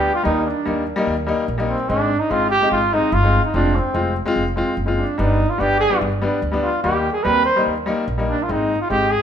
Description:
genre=klezmer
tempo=146 BPM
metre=4/4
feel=straight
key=unclear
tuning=A4 = 440 Hz
part: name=warm cornet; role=melody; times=0.0-9.2 s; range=C4 to C5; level=-19 LUFS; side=right 1 dB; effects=none
part: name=bright upright piano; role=accompaniment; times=0.0-9.1 s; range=G3 to F4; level=-21 LUFS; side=left 2 dB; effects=none
part: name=upright bass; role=bass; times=0.0-9.1 s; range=F1 to Eb2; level=-23 LUFS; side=equal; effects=none
room=moderate recital hall reverb, RT60 1.4 s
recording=minimal, uncompressed stereo recording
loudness=-17 LUFS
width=side -8 dB against mid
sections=0.0-9.2 A section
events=none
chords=0.2 Eb; 1.9 Ab; 3.5 Fm; 5.2 G; 6.8 Eb; 8.5 Ab

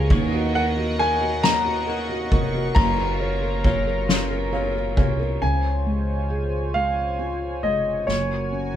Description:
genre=six-eight pop ballad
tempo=45 BPM (dotted quarters)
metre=6/8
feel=straight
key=unclear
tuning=A4 = 441 Hz
part: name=felt-muted upright piano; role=accompaniment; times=0.0-8.8 s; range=Db3 to Ab5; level=-28 LUFS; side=right 1 dB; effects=none
part: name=chorused pulse-width pad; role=sustained chords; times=0.0-8.8 s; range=F4 to Db6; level=-31 LUFS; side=left 1 dB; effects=none
part: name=direct-recorded clean electric guitar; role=arpeggios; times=0.0-5.4 s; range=Eb3 to Gb4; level=-32 LUFS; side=left 5 dB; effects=phaser
part: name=upright bass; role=bass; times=0.0-8.8 s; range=F1 to Eb2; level=-26 LUFS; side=equal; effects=none
part: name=soft-mallet drum kit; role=drums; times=0.1-8.3 s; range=kick drum, ride cymbal, snare drum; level=-24 LUFS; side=equal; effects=none
part: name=clear baby grand piano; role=melody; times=0.6-8.8 s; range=Db5 to Bb5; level=-24 LUFS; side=left 1 dB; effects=none
room=light reverb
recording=band playing live in one room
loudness=-20 LUFS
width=side -10 dB against mid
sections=0.0-5.4 A section; 5.4-8.8 B section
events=felt piano fill 4.1-5.4; drum fill 8.1-8.8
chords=0.1 Ebm7; 2.8 Gbmaj7; 5.4 Dbmaj7; 8.1 Gbadd9

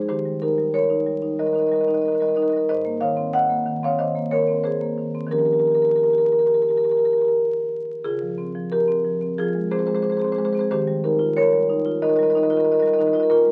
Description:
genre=classical, contemporary piece for solo marimba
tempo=91 BPM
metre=4/4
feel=rubato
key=unclear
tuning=A4 = 440 Hz
part: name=marimba with medium mallets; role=solo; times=0.0-13.5 s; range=Ab2 to Gb5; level=-21 LUFS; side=equal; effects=none
room=moderate studio reverb, RT60 0.6 s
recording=very old 78 rpm record, vinyl crackle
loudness=-21 LUFS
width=mono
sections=0.0-13.5 A section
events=none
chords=0.1 Eb; 2.7 Abadd9; 5.3 Eb9; 8.0 Dbmaj7; 9.4 Fm; 10.7 Ebadd9

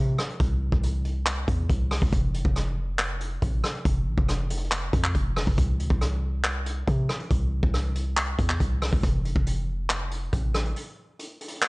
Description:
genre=hip hop, trap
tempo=139 BPM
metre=4/4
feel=half-time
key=unclear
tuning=A4 = 441 Hz
part: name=hard-hitting 808-style bass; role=bass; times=0.0-10.7 s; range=F1 to C3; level=-27 LUFS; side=equal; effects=none
part: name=vintage brush drum kit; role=drums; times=0.2-11.7 s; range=handclaps, hi-hat, kick drum, rim click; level=-25 LUFS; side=equal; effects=vintage 12-bit sampler grit
room=little or no reverb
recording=nothing above 10.6 kHz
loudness=-23 LUFS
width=side -27 dB against mid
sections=0.0-11.7 A section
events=break 10.8-11.7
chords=none

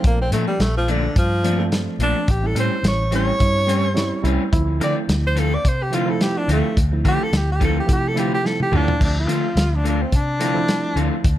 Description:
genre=straight-eighth soul blues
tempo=107 BPM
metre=4/4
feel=swing 54% on 16ths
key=D minor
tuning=A4 = 439 Hz
part: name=breathy tenor saxophone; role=melody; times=0.0-11.2 s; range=D3 to D5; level=-23 LUFS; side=equal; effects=plate reverb
part: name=bright reed electric piano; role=accompaniment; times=0.0-11.3 s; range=F3 to E5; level=-26 LUFS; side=right 3 dB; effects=spring reverb
part: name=vintage muted fingered electric bass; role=bass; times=0.0-11.4 s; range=A1 to D3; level=-22 LUFS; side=equal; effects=none
part: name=warm soul drum kit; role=drums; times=0.0-11.4 s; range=crash cymbal, hi-hat, kick drum, snare drum, toms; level=-20 LUFS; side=equal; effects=none
part: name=electric guitar through a small old amp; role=stabs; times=0.3-11.1 s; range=A2 to F4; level=-26 LUFS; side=left 2 dB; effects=spring reverb
room=light reverb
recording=none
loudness=-17 LUFS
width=side -13 dB against mid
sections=0.0-9.0 A section; 9.0-11.4 B section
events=tenor saxophone solo 0.0-9.0; drum fill 8.4-9.0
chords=0.0 Bbmaj7; 2.3 A7#9; 4.5 Dm7

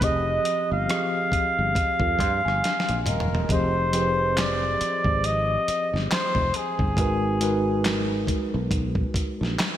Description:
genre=R&B, neo-soul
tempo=69 BPM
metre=4/4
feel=swing 58% on 16ths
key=F dorian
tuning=A4 = 440 Hz
part: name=clear flugelhorn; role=melody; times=0.0-8.3 s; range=Ab4 to F5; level=-25 LUFS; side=equal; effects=slapback echo
part: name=mellow tine electric piano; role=accompaniment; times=0.0-9.8 s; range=F3 to C6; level=-28 LUFS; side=equal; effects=medium stereo tremolo
part: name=sustaining fretless electric bass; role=bass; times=0.0-9.6 s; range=Eb1 to G2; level=-27 LUFS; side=equal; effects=wide subtle chorus
part: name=dusty soul sampler-style drum kit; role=drums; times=0.0-9.8 s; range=handclaps, hi-hat, kick drum, rim click, snare drum, toms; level=-27 LUFS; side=equal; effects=none
room=moderate lush hall reverb, RT60 2.9 s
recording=big arena sound, vinyl crackle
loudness=-21 LUFS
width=side -11 dB against mid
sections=0.0-3.5 A section; 3.5-9.8 B section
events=tine electric piano fill 1.8-3.5; drum fill 2.6-3.5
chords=0.0 Fm9; 7.0 Abm9

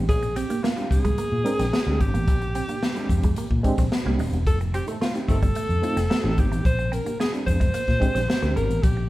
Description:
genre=funk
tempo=110 BPM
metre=4/4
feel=straight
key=unclear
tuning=A4 = 440 Hz
part: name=reed electric piano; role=stabs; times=0.0-8.8 s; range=Ab3 to Bb4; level=-30 LUFS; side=right 2 dB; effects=fast tremolo
part: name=vintage muted fingered electric bass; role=bass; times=0.0-9.1 s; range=Eb1 to Bb2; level=-25 LUFS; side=equal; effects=none
part: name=breathy alto saxophone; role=melody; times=0.1-9.1 s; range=F4 to C5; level=-28 LUFS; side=equal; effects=none
part: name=swinging big-band drum kit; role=drums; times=0.1-9.0 s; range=hi-hat, kick drum, snare drum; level=-24 LUFS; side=equal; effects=none
part: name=semi-hollow electric guitar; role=riff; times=0.2-9.0 s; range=G3 to C4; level=-32 LUFS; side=right 4 dB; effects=phaser
part: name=dark horn section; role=second line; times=4.9-5.4 s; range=Eb3 to A4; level=-36 LUFS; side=left 1 dB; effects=none
room=light reverb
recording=band playing live in one room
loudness=-20 LUFS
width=side -17 dB against mid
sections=0.0-9.1 A section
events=none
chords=0.0 Bb13; 4.5 F9; 6.7 Bb13

